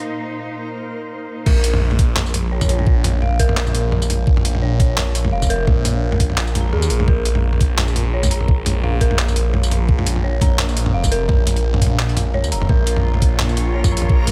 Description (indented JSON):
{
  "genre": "half-time drum and bass",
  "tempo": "171 BPM",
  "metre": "4/4",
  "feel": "swing 55% on 16ths, half-time",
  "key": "Bb minor",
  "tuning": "A4 = 440 Hz",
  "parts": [
    { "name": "rich studio cello section", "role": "sustained chords", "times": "0.0-1.5, 12.7-14.3 s", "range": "Bb2 to Db5", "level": "-30 LUFS", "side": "equal", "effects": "sidechain pumping" },
    { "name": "dark detuned synth bell", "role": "arpeggios", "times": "0.0-14.3 s", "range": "Ab4 to Bb5", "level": "-28 LUFS", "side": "equal", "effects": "chorus, phaser, tape echo" },
    { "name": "backwards swelling texture", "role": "texture", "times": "0.0-0.1, 13.6-14.3 s", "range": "Bb4", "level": "-39 LUFS", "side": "equal", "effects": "none" },
    { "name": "phased detuned saw bass", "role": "bass", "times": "1.5-14.3 s", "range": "F1 to Eb2", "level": "-21 LUFS", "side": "equal", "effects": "phaser" },
    { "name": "boom bap sampler-style drum kit", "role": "drums", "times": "1.5-14.3 s", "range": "crash cymbal, handclaps, hi-hat, tambourine, toms", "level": "-24 LUFS", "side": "equal", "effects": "overdrive" },
    { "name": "electronic kick drum", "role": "drums", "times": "1.5-14.2 s", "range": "none", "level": "-18 LUFS", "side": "equal", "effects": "none" }
  ],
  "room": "little or no reverb",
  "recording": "none",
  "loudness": "-18 LUFS",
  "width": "mono",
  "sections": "0.0-1.5 A section; 1.5-14.3 B section",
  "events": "break 0.1-1.5; drop 1.5-14.3",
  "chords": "0.0 Bb5; 1.5 Bbm"
}